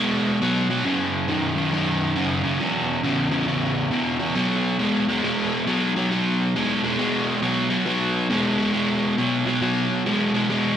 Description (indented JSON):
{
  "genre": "rock",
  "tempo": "137 BPM",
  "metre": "4/4",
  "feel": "swing 65% on 8ths",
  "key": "B major",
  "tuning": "A4 = 440 Hz",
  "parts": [
    { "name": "crunchy overdriven guitar", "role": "solo", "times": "0.0-10.8 s", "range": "E2 to G#3", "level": "-20 LUFS", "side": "equal", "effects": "analog delay" }
  ],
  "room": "wet lush hall reverb, RT60 2.8 s",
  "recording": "big arena sound",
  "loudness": "-20 LUFS",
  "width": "side -9 dB against mid",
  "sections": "0.0-7.9 A section; 7.9-10.8 A section",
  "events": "none",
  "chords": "0.0 B5; 0.8 F#5; 2.6 E5; 4.4 B5"
}